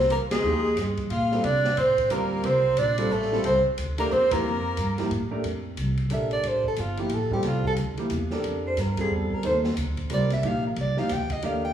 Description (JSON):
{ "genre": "modal jazz", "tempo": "180 BPM", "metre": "3/4", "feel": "swing 62% on 8ths", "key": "F mixolydian from 5.4 s", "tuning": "A4 = 439 Hz", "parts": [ { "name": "mellow soprano saxophone", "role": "melody", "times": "0.0-11.7 s", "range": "F4 to G5", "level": "-25 LUFS", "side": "right 1 dB", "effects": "none" }, { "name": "bright tenor saxophone", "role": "second line", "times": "0.0-5.1 s", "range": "Ab3 to F4", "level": "-31 LUFS", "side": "left 1 dB", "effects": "none" }, { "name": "upright bass", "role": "bass", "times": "0.0-11.7 s", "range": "G1 to C3", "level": "-28 LUFS", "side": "equal", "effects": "none" }, { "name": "open jazz drum kit", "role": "drums", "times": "0.0-11.5 s", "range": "hi-hat, kick drum, ride cymbal, snare drum", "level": "-36 LUFS", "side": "equal", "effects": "none" }, { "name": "warm baby grand piano", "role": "accompaniment", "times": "0.4-11.6 s", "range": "F3 to C5", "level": "-30 LUFS", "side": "right 1 dB", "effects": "none" } ], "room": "wet recital hall reverb, RT60 1.6 s", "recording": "recorded in a church or concert hall, small room ambience", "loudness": "-22 LUFS", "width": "side -9 dB against mid", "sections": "0.0-5.4 A section; 5.4-11.7 B section", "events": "band accent 0.3, 4.3; soprano saxophone solo 5.4-11.7", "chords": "0.0 Bb13sus4; 1.4 C13sus4; 5.4 Fmaj9; 9.4 Ebmaj9" }